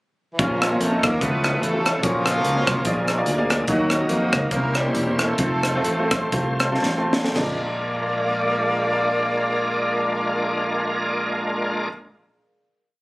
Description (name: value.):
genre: uptempo gospel.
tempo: 109-146 BPM.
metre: 4/4.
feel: swing 56% on 8ths.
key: unclear.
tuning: A4 = 444 Hz.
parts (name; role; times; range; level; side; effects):
growling tenor saxophone; melody; 0.3-11.9 s; E3 to Cb4; -27 LUFS; right 1 dB; none.
clear horn section; melody; 0.4-11.9 s; Bb3 to D5; -27 LUFS; left 1 dB; none.
clear grand piano; accompaniment; 0.4-11.9 s; Bb1 to Eb5; -26 LUFS; equal; none.
bright tonewheel organ; sustained chords; 0.4-11.9 s; Db3 to C5; -27 LUFS; equal; slow rotary speaker, overdrive, chorus vibrato.
warbly tape-like pad; sustained chords; 1.3-11.9 s; Db4 to Eb6; -35 LUFS; equal; none.
fingered electric bass; bass; 0.4-11.9 s; E1 to F2; -28 LUFS; equal; none.
crisp fusion drum kit; drums; 0.4-7.5 s; crash cymbal, hi-hat, kick drum, rim click, snare drum, toms; -24 LUFS; equal; none.
room: light reverb, small room ambience.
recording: recorded on a phone in the room, club reverb.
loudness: -19 LUFS.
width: side -21 dB against mid.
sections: 0.0-0.4 pickup bar; 0.4-7.4 breakdown; 7.4-11.8 final chord.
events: slowing down 3.7-7.4; drum fill 6.8-7.4.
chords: 0.4 Bbm; 1.2 Db7alt; 2.0 Gb/Bb; 2.9 Bb7; 3.7 Ebm; 4.5 C7b9; 5.4 F; 7.4 Bb7.